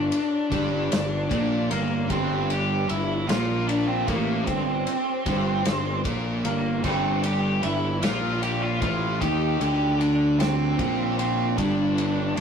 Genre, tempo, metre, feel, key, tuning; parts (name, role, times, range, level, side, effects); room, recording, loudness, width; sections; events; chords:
quiet-loud alternative rock; 51 BPM (dotted quarters); 6/8; straight; G minor; A4 = 439 Hz
octave-fuzz lead guitar; melody; 0.0-12.4 s; Bb3 to G5; -26 LUFS; equal; distortion
overdriven semi-hollow guitar; riff; 0.0-12.4 s; G2 to Eb4; -30 LUFS; left 3 dB; spring reverb
thick fuzz guitar; riff; 0.0-12.4 s; G2 to Eb4; -31 LUFS; right 5 dB; distortion
fuzz fingered electric bass; bass; 0.0-12.4 s; G1 to Eb2; -28 LUFS; equal; overdrive
loose indie drum kit; drums; 0.1-12.4 s; crash cymbal, kick drum, ride cymbal, snare drum; -31 LUFS; left 1 dB
moderate stone room reverb, RT60 1.2 s; rough rehearsal-room recording, warm saturation; -22 LUFS; side -7 dB against mid
0.0-12.4 A section
0.0 Gm